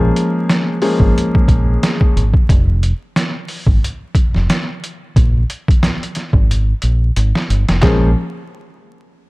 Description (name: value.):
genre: hip hop, boom-bap hip-hop.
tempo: 90 BPM.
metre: 4/4.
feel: swing 57% on 16ths.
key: Bb minor.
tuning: A4 = 438 Hz.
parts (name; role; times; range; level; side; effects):
dark concert grand piano; accompaniment; 0.0-2.2, 7.8-8.1 s; F3 to Ab4; -17 LUFS; left 1 dB; cassette tape, high-pass filter, low-pass filter.
deep dub fingered electric bass; bass; 0.0-8.1 s; F1 to Bb1; -14 LUFS; equal; none.
trip hop sampler-style drum kit; drums; 0.2-8.0 s; handclaps, hi-hat, kick drum, snare drum; -15 LUFS; equal; overdrive.
room: digital ambience.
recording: dark, warm production, vinyl crackle.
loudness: -13 LUFS.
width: side -23 dB against mid.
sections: 0.0-7.8 A section; 7.8-9.3 B section.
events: drum fill 6.5-7.8.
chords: 0.0 Bbm7; 2.5 N.C.; 5.2 Bb5; 7.8 Bbm7.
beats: 0.49 1.16 1.83 | 2.49 3.16 3.83 4.49 | 5.16 5.83 6.49 7.16 | 7.83.